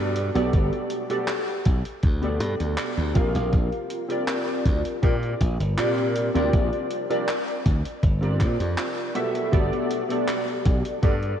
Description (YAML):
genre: vaporwave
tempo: 80 BPM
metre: 4/4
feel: straight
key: unclear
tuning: A4 = 442 Hz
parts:
  - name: warbly lo-fi synth keys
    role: accompaniment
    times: 0.0-11.2 s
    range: B3 to F5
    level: -25 LUFS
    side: equal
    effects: wide subtle chorus, ping-pong delay
  - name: glassy slap bass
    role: bass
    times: 0.0-11.3 s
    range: G1 to Bb2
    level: -25 LUFS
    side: equal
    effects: tube saturation
  - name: gated 80s digital drum machine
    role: drums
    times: 0.2-11.4 s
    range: handclaps, hi-hat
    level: -34 LUFS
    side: equal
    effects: gated reverb, vintage 12-bit sampler grit, small room ambience
  - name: electronic kick drum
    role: drums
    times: 0.5-11.2 s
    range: none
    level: -22 LUFS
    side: equal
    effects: vintage 12-bit sampler grit, small room ambience
room: wet lush hall reverb, RT60 2.6 s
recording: dreamy mix soaked in reverb, cassette tape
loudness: -21 LUFS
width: side -9 dB against mid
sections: 0.0-9.5 A section; 9.5-11.4 B section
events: break 8.8-9.5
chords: 0.0 Gmaj7; 3.2 Bb6; 9.5 Gmaj7